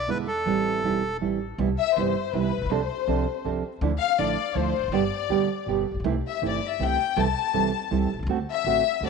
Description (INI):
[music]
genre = tango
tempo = 162 BPM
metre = 3/4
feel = rubato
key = C major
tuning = A4 = 439 Hz
[part]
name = bandoneon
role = melody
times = 0.0-1.2 s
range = A4 to B4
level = -29 LUFS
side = right 1 dB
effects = slapback echo
[part]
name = upright bass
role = bass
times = 0.0-9.1 s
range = E1 to E2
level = -31 LUFS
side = left 2 dB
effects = none
[part]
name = nylon-string guitar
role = accompaniment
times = 0.1-9.1 s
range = B2 to A4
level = -26 LUFS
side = right 8 dB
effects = none
[part]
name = rich chamber violin section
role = second line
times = 1.8-9.1 s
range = B4 to A5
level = -26 LUFS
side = left 14 dB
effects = none
[sound]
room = light reverb, small room ambience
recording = 1960s-style stereo with parts hard left and right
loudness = -23 LUFS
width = side -5 dB against mid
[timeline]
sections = 0.0-1.6 A section; 1.6-9.1 B section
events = violin section solo 1.6-9.1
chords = 0.5 Am7; 1.6 Cmaj7; 2.7 F6/C; 3.8 Dmadd9; 4.9 G; 6.0 C6; 7.2 Am7/C; 8.3 D7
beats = 0.09 | 0.47 0.84 1.21 | 1.59 1.96 2.34 | 2.71 3.08 3.45 | 3.82 4.19 4.56 | 4.93 5.30 5.67 | 6.05 6.42 6.79 | 7.16 7.54 7.91 | 8.28 8.65 9.02